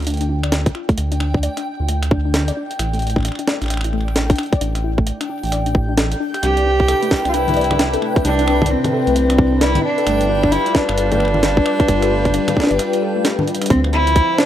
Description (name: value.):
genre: IDM.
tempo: 132 BPM.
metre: 4/4.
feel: swing 62% on 16ths.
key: D dorian.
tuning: A4 = 438 Hz.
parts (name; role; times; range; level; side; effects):
dark detuned saw bass; bass; 0.0-14.2 s; G1 to D2; -20 LUFS; equal; none.
jungle sampler-style drum kit; drums; 0.0-14.5 s; congas, finger snaps, hi-hat, snare drum; -22 LUFS; equal; none.
backwards swelling texture; texture; 0.1-13.7 s; G5; -28 LUFS; right 1 dB; built-in reverb, sidechain pumping.
warbly dusty pluck; arpeggios; 0.1-13.7 s; A3 to D5; -25 LUFS; left 3 dB; chorus, tape echo.
electronic kick drum; drums; 0.7-14.3 s; none; -16 LUFS; equal; none.
rich cello; melody; 6.4-14.5 s; C4 to G4; -18 LUFS; right 1 dB; vintage 12-bit sampler grit, ping-pong delay.
phased analog pad; sustained chords; 6.6-14.5 s; C3 to B4; -21 LUFS; left 3 dB; phaser, chorus, vintage 12-bit sampler grit, sidechain pumping.
room: moderate plate reverb, RT60 2.1 s.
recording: rough home demo mix.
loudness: -15 LUFS.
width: side -11 dB against mid.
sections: 0.0-13.7 A section.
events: break 12.8-13.7; drum fill 13.5.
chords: 0.0 Dm; 2.8 A5; 6.4 Cmaj9; 10.1 G7; 13.7 Dm7.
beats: 0.07 0.52 | 0.98 1.43 1.89 2.34 | 2.79 3.25 3.70 4.16 | 4.61 5.07 5.52 5.98 | 6.43 6.88 7.34 7.79 | 8.25 8.70 9.16 9.61 | 10.07 10.52 10.98 11.43 | 11.88 12.34 12.79 13.25 | 13.70 14.16.